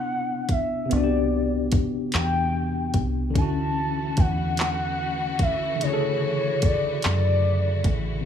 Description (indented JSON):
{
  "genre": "slow six-eight R&B",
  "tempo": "49 BPM (dotted quarters)",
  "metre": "6/8",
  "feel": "straight",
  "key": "D major",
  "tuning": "A4 = 440 Hz",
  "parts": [
    { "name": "gliding portamento lead", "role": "melody", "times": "0.0-7.9 s", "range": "C#5 to A5", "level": "-28 LUFS", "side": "left 2 dB", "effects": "chorus, slapback echo" },
    { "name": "tine electric piano", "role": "accompaniment", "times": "0.0-8.3 s", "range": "C3 to A4", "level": "-27 LUFS", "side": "left 2 dB", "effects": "overdrive, fast stereo tremolo" },
    { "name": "deep dub fingered electric bass", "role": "bass", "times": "0.0-8.3 s", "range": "A1 to F#2", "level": "-26 LUFS", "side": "equal", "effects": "none" },
    { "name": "smooth R&B drum kit", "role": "drums", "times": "0.5-8.0 s", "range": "handclaps, hi-hat, kick drum", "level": "-24 LUFS", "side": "equal", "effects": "none" },
    { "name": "clear studio string section", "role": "sustained chords", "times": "3.4-8.3 s", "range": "E3 to F#4", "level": "-34 LUFS", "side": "left 3 dB", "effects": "none" }
  ],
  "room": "little or no reverb",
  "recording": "studio ambience",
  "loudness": "-21 LUFS",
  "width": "side -8 dB against mid",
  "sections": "0.0-8.3 A section",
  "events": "none",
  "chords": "0.0 Cmaj9; 3.4 Dmaj9"
}